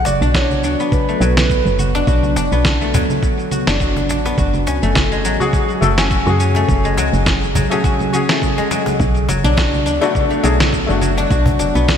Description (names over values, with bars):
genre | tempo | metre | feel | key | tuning
organic downtempo | 104 BPM | 4/4 | swing 55% on 16ths | unclear | A4 = 440 Hz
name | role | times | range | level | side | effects
breathy flute-like synth lead | melody | 0.0-1.7 s | B4 to D5 | -23 LUFS | right 2 dB | wide subtle chorus, ping-pong delay
ethereal airy pad | sustained chords | 0.0-12.0 s | C#3 to C#5 | -25 LUFS | right 1 dB | ensemble chorus, built-in reverb, vintage 12-bit sampler grit, sidechain pumping
guzheng | arpeggios | 0.0-12.0 s | F#3 to F#4 | -19 LUFS | left 2 dB | low-pass filter, digital delay
woody FM bass | bass | 0.0-12.0 s | F#1 to F#2 | -18 LUFS | equal | none
electronic congas, shaker and snare drum | drums | 0.1-12.0 s | none | -21 LUFS | right 2 dB | overdrive, studio reverb
cajon | percussion | 0.1-11.7 s | none | -24 LUFS | left 1 dB | none
electronic kick drum | drums | 0.3-12.0 s | none | -19 LUFS | equal | overdrive, studio reverb
felt-muted upright piano | accompaniment | 5.4-12.0 s | A3 to A4 | -21 LUFS | left 3 dB | sidechain pumping, digital delay
room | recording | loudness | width
moderate lush hall reverb, RT60 2.4 s | bright 1980s-style digital production | -13 LUFS | side -8 dB against mid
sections
0.0-12.0 A section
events
none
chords
0.0 Bm7; 4.4 F#madd9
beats
0.34 0.92 1.50 | 2.07 2.65 3.23 3.80 | 4.38 4.96 5.53 6.11 | 6.69 7.26 7.84 8.42 | 9.00 9.57 10.15 10.73 | 11.30 11.88